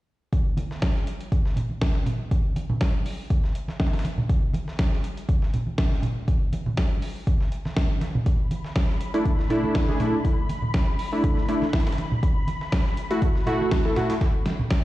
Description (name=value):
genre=deep house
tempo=121 BPM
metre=4/4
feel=swing 54% on 16ths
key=unclear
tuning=A4 = 440 Hz
part: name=breakbeat sampler-style drum kit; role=drums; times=0.3-14.8 s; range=hi-hat, snare drum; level=-41 LUFS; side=equal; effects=sidechain pumping on hats, high-pass filter on hats, high-pass filter on snare
part: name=electronic kick drum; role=drums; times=0.3-14.8 s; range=none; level=-23 LUFS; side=equal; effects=overdrive
part: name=congas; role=percussion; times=0.6-14.7 s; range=none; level=-29 LUFS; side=right 1 dB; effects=none
part: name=electronic snare drum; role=drums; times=0.8-14.8 s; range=none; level=-31 LUFS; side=equal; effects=none
part: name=soft string machine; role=texture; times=8.3-14.8 s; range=B5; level=-36 LUFS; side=left 2 dB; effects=ensemble chorus, sidechain pumping
part: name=warm analog keys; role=stabs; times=9.1-14.1 s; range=A3 to A4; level=-25 LUFS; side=equal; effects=chorus, sidechain pumping, analog delay
room=light reverb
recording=played on a big sound system in a bare room, cassette tape, stone room reverb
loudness=-22 LUFS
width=side -16 dB against mid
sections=0.3-14.8 A section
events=none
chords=0.3 N.C.; 8.3 E7sus4; 12.2 F#m7